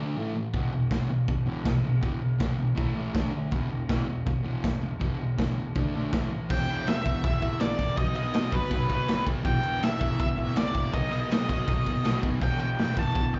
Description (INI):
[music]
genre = garage rock duo or trio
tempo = 162 BPM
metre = 4/4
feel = straight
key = E harmonic minor from 6.5 s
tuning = A4 = 441 Hz
[part]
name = fuzz guitar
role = riff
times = 0.0-13.4 s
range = E2 to D4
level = -31 LUFS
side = equal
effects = distortion
[part]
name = raw garage drum kit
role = drums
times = 0.5-13.4 s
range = crash cymbal, kick drum, ride cymbal, snare drum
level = -30 LUFS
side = equal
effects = none
[part]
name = octave-fuzz lead guitar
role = melody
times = 6.5-13.4 s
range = B4 to A5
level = -34 LUFS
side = equal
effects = distortion
[sound]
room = moderate club reverb, RT60 0.5 s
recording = live gig heard through the venue's PA, cassette tape, club reverb, nothing above 7.7 kHz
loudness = -27 LUFS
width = mono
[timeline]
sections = 0.0-6.5 A section; 6.5-13.4 B section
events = none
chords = 0.2 A5; 0.5 E5; 2.8 A5; 3.2 D5; 3.5 E5; 5.8 D5; 6.1 A5; 6.5 Em; 8.0 B; 9.5 Em; 10.9 B; 12.4 Em